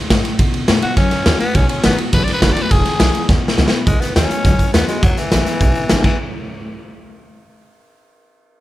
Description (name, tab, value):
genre	rockabilly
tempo	207 BPM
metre	4/4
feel	straight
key	E major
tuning	A4 = 439 Hz
part	picked steel-string acoustic guitar	accompaniment	0.0-6.2 s	E2 to F#4	-22 LUFS	left 3 dB	none
part	upright bass	bass	0.1-6.2 s	E1 to B2	-19 LUFS	equal	none
part	raw garage drum kit	drums	0.1-6.1 s	crash cymbal, hi-hat, kick drum, ride cymbal, snare drum	-15 LUFS	equal	none
part	breathy tenor saxophone	melody	0.8-6.2 s	E3 to D5	-20 LUFS	left 2 dB	slapback echo
room	light reverb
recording	none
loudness	-13 LUFS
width	side -15 dB against mid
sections	0.0-3.9 A section; 3.9-6.2 B section; 6.2-7.4 C section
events	drum fill 3.3-3.9, 6.0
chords	0.4 B7; 2.7 E; 3.9 B7; 5.0 E; 6.2 N.C.